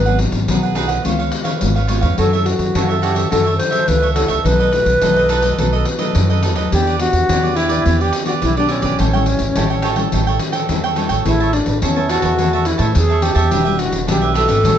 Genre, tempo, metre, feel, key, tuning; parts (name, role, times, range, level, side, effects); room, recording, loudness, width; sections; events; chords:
samba and choro; 106 BPM; 4/4; straight; A major from 11.3 s; A4 = 439 Hz
alto flute; melody; 0.0-14.8 s; C#4 to C5; -18 LUFS; equal
cavaquinho; accompaniment; 0.0-14.8 s; D4 to A5; -22 LUFS; right 8 dB
nylon-string guitar; accompaniment; 0.0-14.8 s; F#2 to B4; -24 LUFS; left 3 dB
upright bass; bass; 0.0-14.8 s; E1 to A2; -19 LUFS; equal
pandeiro; percussion; 0.1-14.8 s; -21 LUFS; left 4 dB
light reverb; nothing above 7.8 kHz; -14 LUFS; side -9 dB against mid
0.0-11.3 A section; 11.3-14.8 B section
0.0 G#m7; 1.0 C#7; 2.2 F#m7; 4.5 B7; 6.7 Em7; 9.0 A7; 11.3 Amaj9; 13.5 Em9